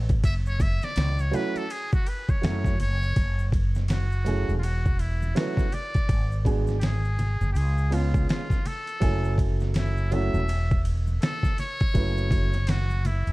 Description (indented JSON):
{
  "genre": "hip hop, jazz-hop",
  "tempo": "82 BPM",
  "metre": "4/4",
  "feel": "swing 60% on 16ths",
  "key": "F# minor",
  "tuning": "A4 = 440 Hz",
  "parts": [
    { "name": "mellow fretless electric bass", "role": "bass", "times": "0.0-13.3 s", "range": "E1 to F#2", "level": "-25 LUFS", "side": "equal", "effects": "wide subtle chorus" },
    { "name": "dusty soul sampler-style drum kit", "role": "drums", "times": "0.1-13.3 s", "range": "hi-hat, kick drum, ride cymbal, snare drum", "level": "-26 LUFS", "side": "equal", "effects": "overdrive" },
    { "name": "maracas and congas", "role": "percussion", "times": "0.1-13.3 s", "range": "none", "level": "-37 LUFS", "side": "equal", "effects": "none" },
    { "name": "trumpet with metal mute", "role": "melody", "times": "0.3-13.3 s", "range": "E4 to E5", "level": "-33 LUFS", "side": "left 1 dB", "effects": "none" },
    { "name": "dark upright piano", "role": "accompaniment", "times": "1.3-12.5 s", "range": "F#3 to G#5", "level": "-31 LUFS", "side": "right 3 dB", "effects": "none" }
  ],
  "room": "studio reverb",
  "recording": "dark, warm production, vinyl crackle",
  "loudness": "-22 LUFS",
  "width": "side -20 dB against mid",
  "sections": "0.0-3.2 A section; 3.2-13.3 B section",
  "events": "muted trumpet solo 0.0-3.2",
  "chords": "0.0 F#m7; 6.1 G#m7b5; 7.6 C#7; 9.0 F#m7"
}